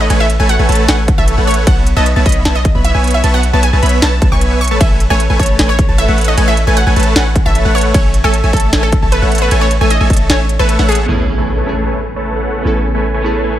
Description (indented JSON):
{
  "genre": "future bass",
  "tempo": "153 BPM",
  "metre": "4/4",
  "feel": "half-time",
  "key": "A major",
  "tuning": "A4 = 440 Hz",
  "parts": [
    { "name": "wide unison pluck", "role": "melody", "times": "0.0-11.0 s", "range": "G#4 to C#6", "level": "-19 LUFS", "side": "right 1 dB", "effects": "sidechain pumping, tape echo" },
    { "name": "wide unison pluck", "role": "arpeggios", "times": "0.0-11.1 s", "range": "F#5 to B5", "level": "-23 LUFS", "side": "right 1 dB", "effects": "sidechain pumping" },
    { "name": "supersaw chords", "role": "riff", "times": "0.0-13.5 s", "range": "A3 to B5", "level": "-17 LUFS", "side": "equal", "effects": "vintage 12-bit sampler grit, sidechain pumping, low-pass filter" },
    { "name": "warm 808-style bass", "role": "bass", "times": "0.0-13.6 s", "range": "A1 to B1", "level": "-14 LUFS", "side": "equal", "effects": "sidechain pumping" },
    { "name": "trap drum kit", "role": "drums", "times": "0.1-11.2 s", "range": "crash cymbal, hi-hat, ride cymbal, snare drum", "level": "-20 LUFS", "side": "equal", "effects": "low-pass filter on hats, low-pass filter on snare, low-pass filter on cymbals" },
    { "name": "electronic kick drum", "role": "drums", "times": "1.1-10.2 s", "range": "none", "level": "-13 LUFS", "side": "equal", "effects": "overdrive" },
    { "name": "glassy digital keys", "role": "accompaniment", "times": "11.1-13.6 s", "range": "B3 to A4", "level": "-22 LUFS", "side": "right 3 dB", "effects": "chorus, sidechain pumping, tape echo" },
    { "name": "shimmering ambient pad", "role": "sustained chords", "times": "12.1-13.6 s", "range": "C#3 to G#5", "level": "-28 LUFS", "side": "left 1 dB", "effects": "chorus, built-in reverb, sidechain pumping" },
    { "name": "impact", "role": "sound effects", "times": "11.1-12.7 s", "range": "none", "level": "-23 LUFS", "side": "equal", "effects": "none" }
  ],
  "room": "digital ambience",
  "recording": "none",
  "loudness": "-10 LUFS",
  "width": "side -12 dB against mid",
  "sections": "0.0-11.1 A section; 11.1-13.6 B section",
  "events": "drop 0.0-11.1; kick drops out 10.3-11.1; impact 11.1-12.7",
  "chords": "0.0 Amaj9; 1.7 B7sus4; 4.6 Amaj9; 7.9 F#m9/A; 11.1 Amaj9"
}